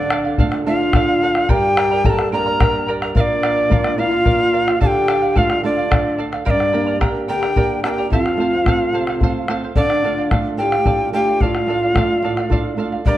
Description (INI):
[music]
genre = andean folk, Andean ensemble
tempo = 73 BPM (dotted quarters)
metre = 6/8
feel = straight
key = D minor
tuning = A4 = 442 Hz
[part]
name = bright quena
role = melody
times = 0.0-13.2 s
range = D5 to Bb5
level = -20 LUFS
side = equal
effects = none
[part]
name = breathy mellow long shakuhachi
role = second line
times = 0.0-13.2 s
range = D4 to Bb4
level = -21 LUFS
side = left 2 dB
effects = none
[part]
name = charango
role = accompaniment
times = 0.0-13.2 s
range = G4 to Bb5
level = -25 LUFS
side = right 4 dB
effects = none
[part]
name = flamenco guitar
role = accompaniment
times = 0.0-13.2 s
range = F2 to G4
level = -23 LUFS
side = right 3 dB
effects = none
[part]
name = bombo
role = percussion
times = 0.1-13.2 s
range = none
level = -20 LUFS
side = left 1 dB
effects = none
[sound]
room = moderate recital hall reverb, RT60 1.5 s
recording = dark, warm production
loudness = -15 LUFS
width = side -13 dB against mid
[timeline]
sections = 0.0-6.5 A section; 6.5-13.2 B section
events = none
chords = 0.0 Dm; 1.5 Gm; 3.2 Bb; 4.8 Dm; 6.5 Gm; 8.1 F; 9.8 Dm